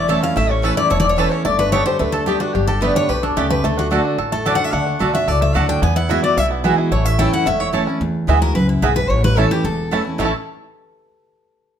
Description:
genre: bluegrass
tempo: 220 BPM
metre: 4/4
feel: straight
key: A mixolydian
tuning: A4 = 440 Hz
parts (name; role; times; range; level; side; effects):
- picked steel-string acoustic guitar; melody; 0.0-10.3 s; D4 to G#5; -21 LUFS; left 1 dB; none
- lap resonator guitar; second line; 0.0-10.3 s; D4 to G#5; -25 LUFS; left 6 dB; none
- picked steel-string acoustic guitar; accompaniment; 0.0-10.3 s; E2 to G4; -21 LUFS; right 1 dB; none
- bluegrass banjo; arpeggios; 0.0-10.3 s; A3 to A4; -24 LUFS; right 3 dB; none
- upright bass; bass; 0.0-10.3 s; E1 to E2; -21 LUFS; equal; none
- mandolin; stabs; 0.1-10.3 s; A3 to A5; -24 LUFS; right 7 dB; none
room: light reverb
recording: minimal, uncompressed stereo recording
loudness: -15 LUFS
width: side -9 dB against mid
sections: 0.0-8.0 A section; 8.0-10.2 B section; 10.2-11.3 C section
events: none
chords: 0.0 A; 1.5 Gadd9; 3.6 D; 5.8 Eadd9; 6.9 A; 8.0 Eadd9; 9.1 A

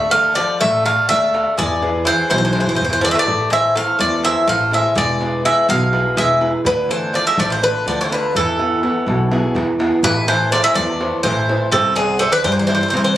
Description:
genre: greek folk, Greek bouzouki band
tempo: 248 BPM (eighths)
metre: 7/8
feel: straight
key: A harmonic minor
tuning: A4 = 441 Hz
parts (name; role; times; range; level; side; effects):
- Greek bouzouki; melody; 0.0-13.1 s; G#4 to F5; -16 LUFS; equal; none
- Greek bouzouki; second line; 0.0-13.1 s; C3 to B3; -24 LUFS; left 2 dB; none
- fingerpicked swing-style acoustic guitar; accompaniment; 0.0-13.2 s; B2 to F5; -22 LUFS; right 1 dB; none
- upright bass; bass; 0.0-13.2 s; E1 to G2; -23 LUFS; equal; none
- darbuka; percussion; 0.1-13.0 s; none; -28 LUFS; equal; none
room: moderate studio reverb, RT60 0.6 s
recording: recorded on a phone in the room, club reverb, compression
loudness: -14 LUFS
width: side -13 dB against mid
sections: 0.0-10.0 A section; 10.0-13.2 A section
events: drum fill 2.7-3.3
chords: 0.0 Dm; 1.6 E; 3.3 Am; 5.0 E; 6.7 Dm; 8.3 E; 10.0 Am; 11.7 Cadd9

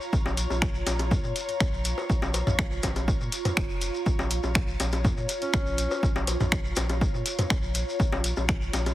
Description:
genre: minimal techno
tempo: 122 BPM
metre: 4/4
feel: straight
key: Bb minor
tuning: A4 = 442 Hz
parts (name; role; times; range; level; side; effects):
- shekere; percussion; 0.0-8.9 s; none; -38 LUFS; left 2 dB; none
- ethereal airy pad; texture; 0.0-8.9 s; F4 to Bb5; -34 LUFS; equal; ensemble chorus, built-in reverb, phaser, sidechain pumping
- saturated sub bass; bass; 0.1-8.9 s; F1 to Bb2; -30 LUFS; equal; sidechain pumping
- electronic kick drum; drums; 0.1-8.6 s; none; -27 LUFS; equal; none
- electronic bongos and toms; percussion; 0.3-8.9 s; none; -30 LUFS; left 1 dB; none
- punchy analog drum machine; drums; 0.4-8.9 s; finger snaps, hi-hat; -30 LUFS; equal; none
- breathy alto saxophone; melody; 5.4-6.1 s; Db4; -35 LUFS; right 1 dB; dub echo
room: light reverb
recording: heavily compressed radio sound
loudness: -24 LUFS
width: side -15 dB against mid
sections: 0.0-8.9 A section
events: none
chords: 0.0 Bbm

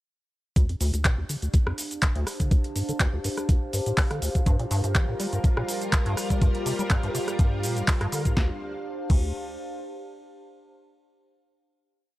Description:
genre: acid house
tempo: 123 BPM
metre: 4/4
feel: swing 54% on 16ths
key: D minor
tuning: A4 = 444 Hz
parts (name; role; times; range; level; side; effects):
- deep acid bass; riff; 0.6-9.3 s; D2 to G3; -29 LUFS; equal; ensemble chorus, vintage 12-bit sampler grit, sidechain pumping
- electro analog drum machine; drums; 0.6-9.2 s; crash cymbal, handclaps, hi-hat, rim click, shaker, snare drum; -30 LUFS; equal; none
- electronic kick drum; drums; 0.6-9.2 s; none; -22 LUFS; equal; none
- warbly tape-like pad; texture; 0.9-10.3 s; D4 to A5; -35 LUFS; equal; chorus, built-in reverb, sidechain pumping
- string machine, full ensemble; sustained chords; 4.8-8.6 s; G3 to Bb4; -32 LUFS; equal; ensemble chorus, sidechain pumping
room: little or no reverb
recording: dry, gritty hardware recording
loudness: -23 LUFS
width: side -16 dB against mid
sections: 0.6-8.4 groove; 8.4-10.3 final chord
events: filter sweep on acid bass 0.6-8.4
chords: 0.6 Dm7; 4.5 Gm7; 8.4 Dm7

